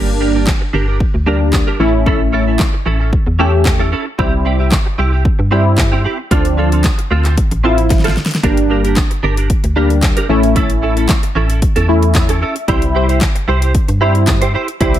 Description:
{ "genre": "dance-pop", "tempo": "113 BPM", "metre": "4/4", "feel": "straight", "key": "unclear", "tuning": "A4 = 440 Hz", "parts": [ { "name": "warm analog keys", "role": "accompaniment", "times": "0.0-15.0 s", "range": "F3 to E5", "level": "-16 LUFS", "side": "left 1 dB", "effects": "chorus, phaser, sidechain pumping" }, { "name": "direct-recorded clean electric guitar", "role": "riff", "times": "0.0-14.9 s", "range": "C4 to C5", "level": "-20 LUFS", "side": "right 3 dB", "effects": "ensemble chorus" }, { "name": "organ-like FM bass", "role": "bass", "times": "0.0-15.0 s", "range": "G1 to G2", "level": "-15 LUFS", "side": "equal", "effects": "sidechain pumping" }, { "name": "pop drum kit", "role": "drums", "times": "0.5-15.0 s", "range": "handclaps, hi-hat, kick drum, snare drum", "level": "-15 LUFS", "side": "equal", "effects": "none" } ], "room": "little or no reverb", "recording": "none", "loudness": "-11 LUFS", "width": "side -12 dB against mid", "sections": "0.0-15.0 A section", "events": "drum fill 7.9-8.4; synth keys fill 11.9-12.7", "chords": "0.0 Gm; 1.8 A; 4.2 C; 6.3 Dm7; 8.4 Gm; 10.3 A; 12.7 C" }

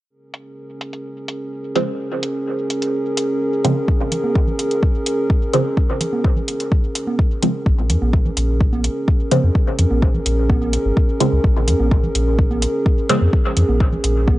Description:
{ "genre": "dub techno", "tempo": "127 BPM", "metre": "4/4", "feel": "straight", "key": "Bb minor", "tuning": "A4 = 435 Hz", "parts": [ { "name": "dark analog pad", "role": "sustained chords", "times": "0.1-14.4 s", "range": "Db4 to Bb4", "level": "-22 LUFS", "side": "equal", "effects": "chorus, sidechain pumping" }, { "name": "electronic hi-hat", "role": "drums", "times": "0.3-14.1 s", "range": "none", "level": "-24 LUFS", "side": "equal", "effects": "low-pass filter on hats" }, { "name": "filtered dub chord stab", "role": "stabs", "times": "1.8-13.2 s", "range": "Db3 to C4", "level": "-20 LUFS", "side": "right 1 dB", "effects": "phaser, sidechain pumping, dub echo" }, { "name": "electronic kick drum", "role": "drums", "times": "3.9-14.4 s", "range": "none", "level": "-16 LUFS", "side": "equal", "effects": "none" }, { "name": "congas", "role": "percussion", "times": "4.1-14.4 s", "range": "none", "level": "-26 LUFS", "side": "right 3 dB", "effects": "overdrive, sidechain pumping on perc, dub echo" }, { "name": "soft dub sub bass", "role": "bass", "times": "7.7-14.4 s", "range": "Ab1 to F2", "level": "-18 LUFS", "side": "equal", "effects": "sidechain pumping" } ], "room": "little or no reverb", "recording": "dry, gritty hardware recording, cassette tape, nothing above 10.9 kHz", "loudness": "-16 LUFS", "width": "side -16 dB against mid", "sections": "0.1-7.7 A section; 7.7-14.4 B section", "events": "filter sweep on synth stab 0.1-7.7", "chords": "0.1 Bbm7" }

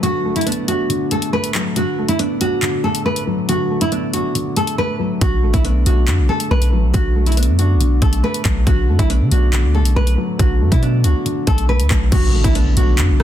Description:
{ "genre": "hip hop, drill", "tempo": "139 BPM", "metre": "4/4", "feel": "half-time", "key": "B minor", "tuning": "A4 = 436 Hz", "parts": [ { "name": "nylon-string guitar", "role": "melody", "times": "0.0-13.2 s", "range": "D4 to B4", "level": "-21 LUFS", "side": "right 1 dB", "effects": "none" }, { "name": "dark concert grand piano", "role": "accompaniment", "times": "0.0-13.2 s", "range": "D3 to D4", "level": "-22 LUFS", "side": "left 1 dB", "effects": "none" }, { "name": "drill drum kit", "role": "drums", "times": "0.0-13.2 s", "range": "crash cymbal, handclaps, hi-hat, kick drum, rim click", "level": "-20 LUFS", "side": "equal", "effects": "none" }, { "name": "long sustained 808-style bass", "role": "bass", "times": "5.2-13.2 s", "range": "A1 to D3", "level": "-15 LUFS", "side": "equal", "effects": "none" }, { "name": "impact", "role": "sound effects", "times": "12.1-13.2 s", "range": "none", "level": "-22 LUFS", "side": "equal", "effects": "none" } ], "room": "little or no reverb", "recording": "dense, heavily limited modern master", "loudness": "-14 LUFS", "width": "side -11 dB against mid", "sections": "0.0-12.1 A section; 12.1-13.2 B section", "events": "break 0.0-5.2; drums muted 4.8-5.2; impact 12.1-13.2", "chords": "0.0 Bm7" }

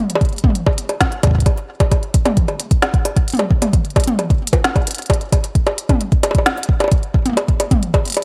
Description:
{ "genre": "IDM", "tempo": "132 BPM", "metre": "4/4", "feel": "straight", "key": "none", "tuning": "none", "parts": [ { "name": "organic electronic drum kit", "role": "drums", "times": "0.1-8.2 s", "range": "bongos, hi-hat, snare drum, toms", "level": "-21 LUFS", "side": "equal", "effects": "delay" }, { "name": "electronic kick drum", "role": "drums", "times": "0.2-8.0 s", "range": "none", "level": "-18 LUFS", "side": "equal", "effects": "none" } ], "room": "little or no reverb", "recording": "none", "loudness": "-16 LUFS", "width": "mono", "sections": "0.0-8.2 A section", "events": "none", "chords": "none" }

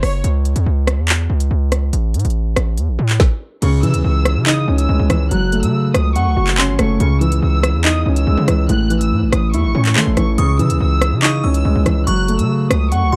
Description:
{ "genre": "hip hop, drill", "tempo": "142 BPM", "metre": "4/4", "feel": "half-time", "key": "C# minor", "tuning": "A4 = 441 Hz", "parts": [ { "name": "bright studio violin section", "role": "melody", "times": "0.0-0.2, 3.6-13.2 s", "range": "C#5 to F#6", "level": "-28 LUFS", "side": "equal", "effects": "low-pass filter" }, { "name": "distorted 808-style bass", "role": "bass", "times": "0.0-13.2 s", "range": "F#1 to E3", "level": "-18 LUFS", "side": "equal", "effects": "distortion" }, { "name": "drill drum kit", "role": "drums", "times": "0.0-13.0 s", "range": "crash cymbal, handclaps, hi-hat, kick drum, rim click, snare drum", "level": "-21 LUFS", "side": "equal", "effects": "none" }, { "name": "dark concert grand piano", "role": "accompaniment", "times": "3.6-13.2 s", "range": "A2 to F#5", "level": "-20 LUFS", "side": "equal", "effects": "low-pass filter" }, { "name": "delicate synth tine bell", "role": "second line", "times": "10.4-13.2 s", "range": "B#5 to E6", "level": "-29 LUFS", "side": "equal", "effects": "chorus, phaser, tape echo" } ], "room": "little or no reverb", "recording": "dark, warm production", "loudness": "-16 LUFS", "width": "mono", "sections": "0.0-3.6 A section; 3.6-13.2 B section", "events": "none", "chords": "0.2 C#m; 1.9 A5; 3.6 C#madd9; 5.3 F#m; 7.0 C#madd9; 8.7 A; 10.4 C#madd9; 12.1 F#m" }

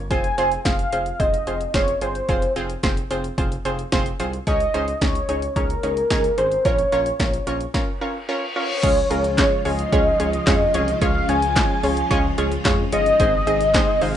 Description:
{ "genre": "synth-pop", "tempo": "110 BPM", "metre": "4/4", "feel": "straight", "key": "unclear", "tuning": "A4 = 441 Hz", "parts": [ { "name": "smooth gliding synth bass", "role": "bass", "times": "0.0-14.2 s", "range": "F1 to F2", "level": "-28 LUFS", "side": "equal", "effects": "none" }, { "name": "warm velvety synth lead", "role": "melody", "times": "0.1-14.2 s", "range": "Bb4 to Ab5", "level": "-21 LUFS", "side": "equal", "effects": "chorus, digital delay" }, { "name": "analog pluck", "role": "accompaniment", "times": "0.1-14.2 s", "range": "Ab3 to Eb5", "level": "-24 LUFS", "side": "right 1 dB", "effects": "chorus" }, { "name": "punchy analog drum machine", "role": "drums", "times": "0.1-14.1 s", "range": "crash cymbal, handclaps, hi-hat, kick drum, snare drum", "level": "-23 LUFS", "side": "equal", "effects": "none" }, { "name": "reverse cymbal", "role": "sound effects", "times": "8.1-8.8 s", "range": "none", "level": "-29 LUFS", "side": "left 3 dB", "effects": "none" }, { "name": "string machine, violins", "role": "sustained chords", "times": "8.8-14.2 s", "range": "C3 to F4", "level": "-28 LUFS", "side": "equal", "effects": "ensemble chorus" } ], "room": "wet studio reverb, RT60 0.6 s", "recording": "rough home demo mix, nothing above 10.6 kHz", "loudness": "-18 LUFS", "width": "side -10 dB against mid", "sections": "0.0-8.8 A section; 8.8-14.2 B section", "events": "stop 7.7-8.8; reverse cymbal 8.1-8.8", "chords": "0.1 Fm; 4.5 Dbsus2; 6.7 Bbm; 8.8 Db; 13.2 Ab" }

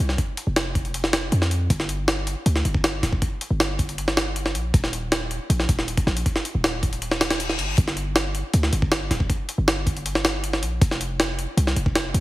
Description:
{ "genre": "drum and bass, jungle", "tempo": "158 BPM", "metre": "4/4", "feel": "straight", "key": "unclear", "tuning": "A4 = 440 Hz", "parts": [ { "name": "warm 808-style bass", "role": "bass", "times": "0.0-12.2 s", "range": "D1 to F2", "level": "-24 LUFS", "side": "equal", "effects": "none" }, { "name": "jungle sampler-style drum kit", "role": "drums", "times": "0.1-12.2 s", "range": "hi-hat, kick drum, snare drum", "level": "-22 LUFS", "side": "equal", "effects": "studio ambience" }, { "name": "reverse cymbal", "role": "sound effects", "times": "7.2-7.8 s", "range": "none", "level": "-31 LUFS", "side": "left 4 dB", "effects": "none" } ], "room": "light reverb, digital ambience", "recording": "heavily compressed radio sound, multiband compression", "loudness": "-20 LUFS", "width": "side -17 dB against mid", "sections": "0.0-12.2 A section", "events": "reverse cymbal 7.2-7.8", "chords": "none" }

